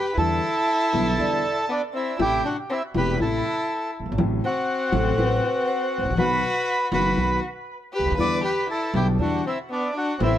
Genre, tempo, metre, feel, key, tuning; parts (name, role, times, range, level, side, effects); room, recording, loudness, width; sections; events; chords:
tango; 120 BPM; 4/4; rubato; E minor; A4 = 441 Hz
bandoneon; melody; 0.0-10.4 s; D4 to D6; -25 LUFS; right 1 dB; plate reverb, tape echo
warm violin; second line; 0.0-10.4 s; B3 to B4; -27 LUFS; left 2 dB
dark concert grand piano; accompaniment; 0.2-10.4 s; E1 to F#4; -25 LUFS; left 3 dB
upright bass; bass; 0.2-10.4 s; E1 to E2; -27 LUFS; right 2 dB
vibraphone with medium mallets; second line; 0.7-1.5, 4.9-6.0 s; A4 to E5; -29 LUFS; right 3 dB; tape echo
light reverb; -21 LUFS; side -11 dB against mid
0.2-10.4 A section
0.2 Em7; 2.2 Am; 4.2 F#m7b5/A; 6.2 B; 8.2 Em7